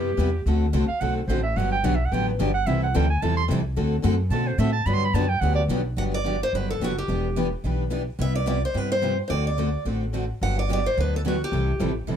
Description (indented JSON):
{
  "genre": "acoustic string swing (jazz manouche)",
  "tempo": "217 BPM",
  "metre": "4/4",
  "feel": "swing 56% on 8ths",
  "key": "G major",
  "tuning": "A4 = 440 Hz",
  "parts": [
    { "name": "breathy clarinet", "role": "second line", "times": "0.0-5.6 s", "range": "G4 to C6", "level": "-27 LUFS", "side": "right 5 dB", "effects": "none" },
    { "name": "picked steel-string acoustic guitar", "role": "accompaniment", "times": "0.0-12.2 s", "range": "C3 to A4", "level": "-29 LUFS", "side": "left 7 dB", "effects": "none" },
    { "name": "picked steel-string acoustic guitar", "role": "accompaniment", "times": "0.0-12.2 s", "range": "C3 to B4", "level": "-30 LUFS", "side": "right 6 dB", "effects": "none" },
    { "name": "upright bass", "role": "bass", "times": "0.0-12.2 s", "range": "E1 to B2", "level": "-25 LUFS", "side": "equal", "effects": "none" },
    { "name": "picked steel-string acoustic guitar", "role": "melody", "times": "6.0-11.9 s", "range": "F#4 to F#5", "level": "-27 LUFS", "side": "right 1 dB", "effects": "slapback echo" }
  ],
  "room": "light reverb",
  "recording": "dark, warm production",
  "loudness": "-21 LUFS",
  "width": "side -8 dB against mid",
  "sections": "0.0-6.0 A section; 6.0-12.2 B section",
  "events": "clarinet solo 0.0-6.0",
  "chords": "0.5 D7; 1.6 Gmaj7; 2.7 C6; 3.8 D7; 4.9 Gmaj7; 7.1 Em7; 8.2 Cmaj7; 9.3 D7; 10.4 Gmaj7; 11.5 C6"
}